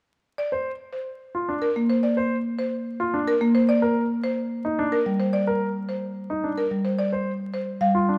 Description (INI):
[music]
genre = classical, minimalist pattern music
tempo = 109 BPM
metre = 3/4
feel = straight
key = Bb major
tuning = A4 = 440 Hz
[part]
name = buzzing marimba with medium hard mallets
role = melody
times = 0.4-8.0 s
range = Bb4 to F5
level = -29 LUFS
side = equal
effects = none
[part]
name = warm baby grand piano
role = arpeggios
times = 0.5-8.2 s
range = D4 to C5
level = -30 LUFS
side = equal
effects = none
[part]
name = marimba with medium mallets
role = accompaniment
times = 1.8-8.0 s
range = G3 to Bb3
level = -27 LUFS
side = equal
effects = none
[sound]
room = light reverb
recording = close, detailed microphones, vinyl crackle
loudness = -25 LUFS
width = mono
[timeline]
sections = 0.4-8.2 A section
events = none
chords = 0.4 Bb; 3.7 Ebmaj7; 7.0 G7(no3)